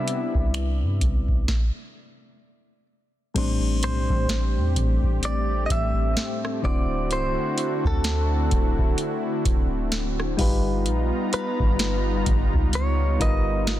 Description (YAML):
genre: contemporary R&B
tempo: 64 BPM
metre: 4/4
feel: swing 58% on 16ths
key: A dorian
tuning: A4 = 442 Hz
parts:
  - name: direct-recorded clean electric guitar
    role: melody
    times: 0.0-13.8 s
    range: A4 to E5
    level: -30 LUFS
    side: equal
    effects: ping-pong delay
  - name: soft electric-piano-like synth keys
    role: accompaniment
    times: 0.0-13.8 s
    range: A2 to D5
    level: -31 LUFS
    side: left 3 dB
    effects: chorus
  - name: warm analog pad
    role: sustained chords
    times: 0.0-13.8 s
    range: C3 to A#5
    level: -29 LUFS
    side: equal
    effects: chorus
  - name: booming analog drum machine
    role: drums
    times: 0.1-13.8 s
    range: crash cymbal, finger snaps, hi-hat, kick drum, rim click, snare drum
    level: -24 LUFS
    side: equal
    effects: soft clipping on snare
  - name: soft 808-style bass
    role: bass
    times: 0.3-13.8 s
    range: C1 to G2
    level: -25 LUFS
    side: equal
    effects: none
room: little or no reverb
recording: dense, heavily limited modern master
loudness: -21 LUFS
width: side -13 dB against mid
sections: 0.0-3.4 A section; 3.4-13.8 B section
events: stop 1.5-3.4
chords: 0.0 Cmaj9; 3.4 Am11; 6.6 D9; 10.4 G7alt